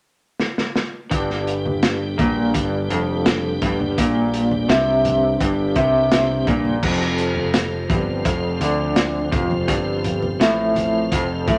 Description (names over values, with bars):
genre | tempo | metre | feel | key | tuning
psychedelic rock | 84 BPM | 4/4 | straight | G mixolydian | A4 = 441 Hz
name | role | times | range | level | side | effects
crunchy breakbeat drum kit | drums | 0.4-11.6 s | crash cymbal, hi-hat, kick drum, snare drum | -24 LUFS | equal | none
tonewheel organ | sustained chords | 1.1-11.6 s | F3 to C5 | -29 LUFS | equal | slow rotary speaker, chorus vibrato
electric guitar through a small old amp | riff | 1.1-11.6 s | F2 to D3 | -23 LUFS | equal | tremolo
growling picked electric bass | bass | 1.1-11.6 s | F1 to D2 | -28 LUFS | equal | overdrive
congas | percussion | 1.7-11.6 s | none | -32 LUFS | equal | none
room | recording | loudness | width
moderate studio reverb, RT60 0.8 s | none | -20 LUFS | mono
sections
0.0-1.1 A section; 1.1-11.6 B section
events
drum fill 0.4-1.1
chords
0.0 N.C.; 1.1 G; 6.8 F5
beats
0.40 | 1.12 1.83 2.54 3.26 | 3.97 4.69 5.40 6.12 | 6.83 7.54 8.26 8.97 | 9.69 10.40 11.11